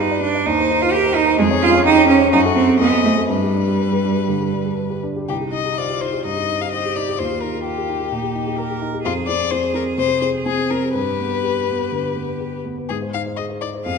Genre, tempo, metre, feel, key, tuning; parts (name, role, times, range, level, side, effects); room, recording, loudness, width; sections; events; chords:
quick classical-period movement for piano trio; 118-131 BPM; 4/4; rubato; C minor; A4 = 440 Hz
warm violin; melody; 0.0-14.0 s; F4 to F5; -23 LUFS; left 10 dB
rich cello; second line; 0.0-14.0 s; G3 to Bb4; -19 LUFS; right 5 dB
dark baby grand piano; accompaniment; 0.0-14.0 s; C2 to D5; -22 LUFS; equal
wet concert hall reverb, RT60 1.8 s; nothing above 10.7 kHz; -16 LUFS; side -5 dB against mid
0.0-5.3 A section; 5.3-14.0 A section
0.5 Cm/Eb; 1.4 Db/F; 2.3 F#dim7; 3.3 G; 5.3 Cm; 7.2 Eb; 9.1 Fm; 10.9 G; 12.9 Ab